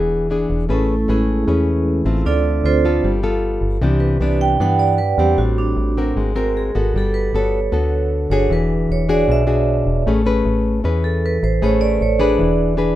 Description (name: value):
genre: bossa nova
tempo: 154 BPM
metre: 4/4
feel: straight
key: A major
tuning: A4 = 438 Hz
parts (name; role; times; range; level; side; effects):
- nylon-string guitar; melody; 0.0-0.5 s; G#4; -22 LUFS; left 1 dB; none
- nylon-string guitar; accompaniment; 0.0-13.0 s; G2 to B4; -19 LUFS; left 3 dB; none
- metallic FM bass; bass; 0.0-13.0 s; E1 to G2; -20 LUFS; equal; none
- vibraphone with medium hard mallets; accompaniment; 0.7-13.0 s; G#3 to G5; -20 LUFS; right 5 dB; none
room: moderate small room reverb, RT60 0.5 s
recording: rough home demo mix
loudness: -15 LUFS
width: side -13 dB against mid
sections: 0.7-13.0 A section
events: vibraphone solo 0.7-13.0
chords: 0.0 E7; 0.7 Amaj9; 2.3 Dm7; 3.0 G9; 3.8 Cmaj9; 5.4 Am7; 6.2 G#9; 6.9 Gmaj9; 8.5 E9; 10.1 Amaj9; 12.4 E7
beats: 0.30 | 0.70 1.09 1.48 1.87 | 2.26 2.65 3.04 3.43 | 3.82 4.21 4.60 4.99 | 5.38 5.77 6.16 6.55 | 6.94 7.33 7.72 8.11 | 8.50 8.89 9.28 9.67 | 10.06 10.45 10.84 11.23 | 11.62 12.01 12.40 12.79